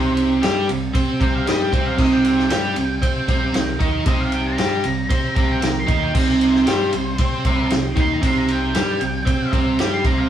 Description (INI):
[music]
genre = blues rock power trio and southern rock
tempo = 115 BPM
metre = 4/4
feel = straight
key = C minor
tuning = A4 = 442 Hz
[part]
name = octave-fuzz lead guitar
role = melody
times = 0.0-10.3 s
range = C5 to C6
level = -27 LUFS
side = right 1 dB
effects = distortion
[part]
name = overdriven tonewheel organ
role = sustained chords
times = 0.0-10.1 s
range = C4 to C5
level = -31 LUFS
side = right 4 dB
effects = none
[part]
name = biting overdriven guitar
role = riff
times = 0.0-10.3 s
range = C3 to C5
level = -20 LUFS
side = right 1 dB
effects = none
[part]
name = fuzz fingered electric bass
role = bass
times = 0.0-10.3 s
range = C2 to C3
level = -25 LUFS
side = right 1 dB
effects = overdrive
[part]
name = vintage drum kit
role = drums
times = 0.2-10.2 s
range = crash cymbal, kick drum, ride cymbal, snare drum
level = -21 LUFS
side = equal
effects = none
[sound]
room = wet studio reverb, RT60 0.8 s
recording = band playing live in one room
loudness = -16 LUFS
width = side -10 dB against mid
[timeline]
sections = 0.0-10.3 A section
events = lead electric guitar solo 0.0-10.3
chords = 0.0 Cm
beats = 0.43 0.95 1.47 | 1.99 2.51 3.03 3.55 | 4.07 4.59 5.11 5.63 | 6.15 6.67 7.19 7.71 | 8.23 8.75 9.27 9.79